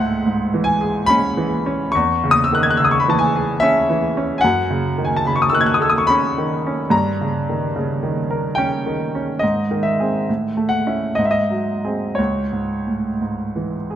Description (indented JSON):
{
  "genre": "classical, romantic nocturne for solo piano",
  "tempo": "57-75 BPM",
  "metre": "3/4",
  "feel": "rubato",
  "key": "C# minor",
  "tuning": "A4 = 440 Hz",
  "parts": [
    { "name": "clear grand piano", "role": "solo", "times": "0.0-14.0 s", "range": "C#2 to G#6", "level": "-16 LUFS", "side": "equal", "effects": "none" }
  ],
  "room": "moderate concert hall reverb, RT60 2.1 s",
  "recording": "close, detailed microphones",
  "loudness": "-16 LUFS",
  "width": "side -10 dB against mid",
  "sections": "0.0-14.0 A section",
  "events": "none",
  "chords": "0.0 C#m; 1.9 C#m/E; 4.4 D#m7b5/F#; 6.9 D#7/G; 9.4 G#; 10.3 A; 11.2 G#7; 12.2 C#m"
}